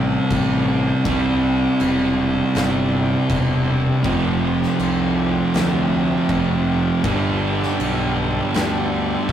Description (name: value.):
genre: stoner and doom metal.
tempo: 80 BPM.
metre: 4/4.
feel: straight.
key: unclear.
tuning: A4 = 439 Hz.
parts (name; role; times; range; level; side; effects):
tonewheel organ; sustained chords; 0.0-9.3 s; C3 to A4; -31 LUFS; left 5 dB; overdrive.
thick fuzz guitar; riff; 0.0-9.3 s; F2 to C4; -27 LUFS; left 4 dB; distortion.
thick fuzz guitar; riff; 0.0-9.3 s; F2 to C4; -19 LUFS; right 2 dB; distortion.
tight distorted guitar; riff; 0.0-9.3 s; F2 to C4; -30 LUFS; left 1 dB; distortion.
fuzz fingered electric bass; bass; 0.0-9.3 s; E1 to D2; -26 LUFS; left 1 dB; overdrive.
oversized low-tuned drum kit; drums; 0.3-9.3 s; crash cymbal, kick drum, snare drum; -27 LUFS; equal; none.
room: light reverb.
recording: rough rehearsal-room recording, warm saturation.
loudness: -17 LUFS.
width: side -10 dB against mid.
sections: 0.0-9.3 A section.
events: none.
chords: 0.0 C; 4.1 F5; 7.0 G.